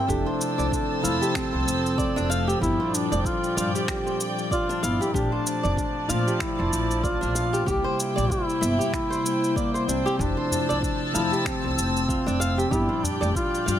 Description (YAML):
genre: organic downtempo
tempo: 95 BPM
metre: 4/4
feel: swing 57% on 16ths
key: unclear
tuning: A4 = 440 Hz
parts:
  - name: mellow duduk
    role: melody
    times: 0.0-13.8 s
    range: Bb3 to G4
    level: -27 LUFS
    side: equal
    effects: tape echo
  - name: warm chamber string section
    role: sustained chords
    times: 0.0-13.8 s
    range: F3 to E6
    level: -30 LUFS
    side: equal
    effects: sidechain pumping
  - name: flamenco guitar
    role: arpeggios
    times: 0.0-13.8 s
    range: D4 to F5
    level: -30 LUFS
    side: right 1 dB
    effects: tape echo
  - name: mellow tine electric piano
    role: accompaniment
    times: 0.1-13.8 s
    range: Bb2 to E4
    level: -31 LUFS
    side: left 3 dB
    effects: medium stereo tremolo, sidechain pumping
  - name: upright bass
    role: bass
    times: 0.1-13.8 s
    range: F1 to Bb2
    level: -28 LUFS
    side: equal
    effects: sidechain pumping
  - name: electronic kick drum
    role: drums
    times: 0.1-13.5 s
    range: none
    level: -31 LUFS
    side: equal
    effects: studio reverb
  - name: electronic shaker and finger snaps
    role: drums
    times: 0.1-13.8 s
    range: none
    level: -32 LUFS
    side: equal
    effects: studio reverb
  - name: bronze singing bowl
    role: texture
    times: 0.1-13.8 s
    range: C4 to A4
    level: -39 LUFS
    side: right 6 dB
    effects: none
  - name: udu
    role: percussion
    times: 10.5-13.2 s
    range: none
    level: -32 LUFS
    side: left 1 dB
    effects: none
room: light reverb, small room reverb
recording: none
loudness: -22 LUFS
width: side -10 dB against mid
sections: 0.1-13.8 A section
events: none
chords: 0.1 Fmaj7; 2.6 Gm7; 7.7 C7; 10.2 Fmaj7; 12.7 Gm7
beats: | 0.09 0.72 1.35 1.98 | 2.62 3.25 3.88 4.51 | 5.14 5.77 6.41 7.04 | 7.67 8.30 8.93 9.56 | 10.20 10.83 11.46 12.09 | 12.72 13.35